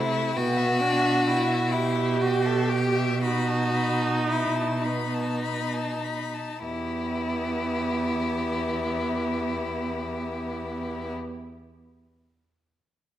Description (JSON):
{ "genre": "classical, slow romantic movement for string quartet", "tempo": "32-46 BPM (dotted quarters)", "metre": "12/8", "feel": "rubato", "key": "E minor", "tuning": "A4 = 438 Hz", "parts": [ { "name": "clear violin", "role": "melody", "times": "0.0-11.1 s", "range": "G4 to B5", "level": "-35 LUFS", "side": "left 8 dB", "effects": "none" }, { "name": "clear violin", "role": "second line", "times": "0.0-11.1 s", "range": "D#4 to A4", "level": "-28 LUFS", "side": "left 2 dB", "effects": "none" }, { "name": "rich viola", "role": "accompaniment", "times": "0.0-11.2 s", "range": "A3 to G4", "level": "-30 LUFS", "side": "right 2 dB", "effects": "none" }, { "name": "rich cello", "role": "bass", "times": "0.0-11.1 s", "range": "E2 to C3", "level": "-29 LUFS", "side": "right 3 dB", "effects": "none" } ], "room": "wet recital hall reverb, RT60 1.5 s", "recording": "none", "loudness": "-24 LUFS", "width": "side -12 dB against mid", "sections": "0.0-6.6 A section; 6.6-13.2 B section", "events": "slowing down 0.0-6.6", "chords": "0.4 Em/B; 3.2 B7; 6.6 Em" }